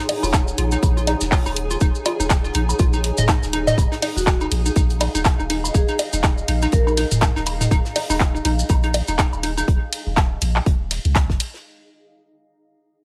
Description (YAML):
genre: minimal techno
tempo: 122 BPM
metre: 4/4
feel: swing 57% on 16ths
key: Eb minor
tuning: A4 = 438 Hz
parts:
  - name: hollow square pluck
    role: riff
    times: 0.0-9.6 s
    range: Eb4 to Eb5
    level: -28 LUFS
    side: equal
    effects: lush chorus, sidechain pumping, dub echo
  - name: flickering grainy texture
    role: texture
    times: 0.0-9.7 s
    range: Ab4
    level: -37 LUFS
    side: equal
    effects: built-in reverb, sidechain pumping
  - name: granular cloud pad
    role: texture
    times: 0.0-9.7 s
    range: Eb4 to Gb5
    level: -34 LUFS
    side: equal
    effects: built-in reverb, sidechain pumping
  - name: damped 70s drum kit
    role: drums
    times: 0.1-11.6 s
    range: hi-hat, snare drum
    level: -37 LUFS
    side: equal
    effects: high-pass filter on hats, high-pass filter on snare, high-pass filter on room
  - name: house drum kit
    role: drums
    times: 0.1-11.5 s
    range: handclaps, hi-hat, ride cymbal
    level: -26 LUFS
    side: equal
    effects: none
  - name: electronic bongos, woodblock and toms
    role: percussion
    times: 0.1-9.4 s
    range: none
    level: -27 LUFS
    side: equal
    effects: none
  - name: punchy sub bass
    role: bass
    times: 0.2-11.4 s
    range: Eb1 to Db2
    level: -26 LUFS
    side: equal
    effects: sidechain pumping
  - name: maracas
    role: percussion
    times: 0.2-9.7 s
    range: none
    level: -32 LUFS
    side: equal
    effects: none
  - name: electronic kick drum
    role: drums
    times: 0.3-11.4 s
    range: none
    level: -21 LUFS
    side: equal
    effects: none
  - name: vibraphone with medium mallets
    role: melody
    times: 4.2-6.9 s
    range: Gb4 to Bb4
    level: -30 LUFS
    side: equal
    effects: tape echo
room: studio reverb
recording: lossy compression artefacts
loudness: -20 LUFS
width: mono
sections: 0.0-11.6 A section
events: drop 0.0-11.6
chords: 0.0 Ebm7